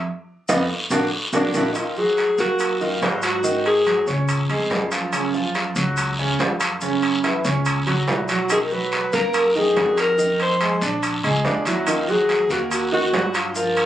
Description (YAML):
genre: Afro-Cuban jazz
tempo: 142 BPM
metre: 4/4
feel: straight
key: Eb minor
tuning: A4 = 442 Hz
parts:
  - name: clear grand piano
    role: accompaniment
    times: 0.0-13.9 s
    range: Db3 to D5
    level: -24 LUFS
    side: right 2 dB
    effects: none
  - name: upright bass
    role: bass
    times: 0.0-13.9 s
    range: Bb1 to Ab2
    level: -27 LUFS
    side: equal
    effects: none
  - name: guiro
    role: percussion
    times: 0.5-13.9 s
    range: none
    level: -29 LUFS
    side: left 1 dB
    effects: none
  - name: maracas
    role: percussion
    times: 0.5-13.9 s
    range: none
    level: -33 LUFS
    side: left 1 dB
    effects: none
  - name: timbales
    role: percussion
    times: 0.5-13.9 s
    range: none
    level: -25 LUFS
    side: right 1 dB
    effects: none
  - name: warm alto saxophone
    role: melody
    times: 1.4-4.1, 8.1-13.9 s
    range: D4 to C5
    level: -20 LUFS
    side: left 1 dB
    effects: none
room: moderate booth ambience, RT60 0.2 s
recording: recorded on a phone in the room, club reverb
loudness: -18 LUFS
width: side -12 dB against mid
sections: 0.0-1.8 A section; 1.8-13.9 B section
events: grand piano solo 0.0-1.8; band accent 0.1-1.8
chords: 0.1 B; 0.9 Bbaug; 1.8 Ebmadd9; 3.4 Ab5; 4.3 Db; 5.1 Gb5; 8.5 Bmaj7; 10.2 Fm7; 11.0 Bb7alt; 11.9 Ebm